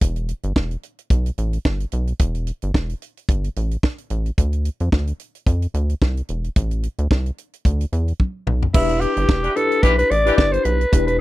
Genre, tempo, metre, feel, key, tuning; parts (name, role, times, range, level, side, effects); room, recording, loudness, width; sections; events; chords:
early-eighties boogie funk; 110 BPM; 4/4; swing 56% on 16ths; A4 = 440 Hz
rubbery square bass; bass; 0.0-11.2 s; E1 to F2; -21 LUFS; equal
tight funk drum kit; drums; 0.0-11.2 s; crash cymbal, hi-hat, kick drum, snare drum, toms; -18 LUFS; equal
growling alto saxophone; melody; 8.7-11.2 s; E4 to D5; -19 LUFS; left 1 dB; slapback echo
mellow tine electric piano; accompaniment; 8.7-11.2 s; D4 to B4; -23 LUFS; left 3 dB; medium stereo tremolo
warm horn section; second line; 9.4-10.4 s; E3 to G4; -23 LUFS; left 1 dB
little or no reverb; dry, close 1970s-style studio recording; -18 LUFS; side -17 dB against mid
0.0-8.7 A section; 8.7-11.2 B section
drum fill 8.2-8.7
0.0 Em; 4.4 Dm9; 6.6 Asus4; 8.7 Em7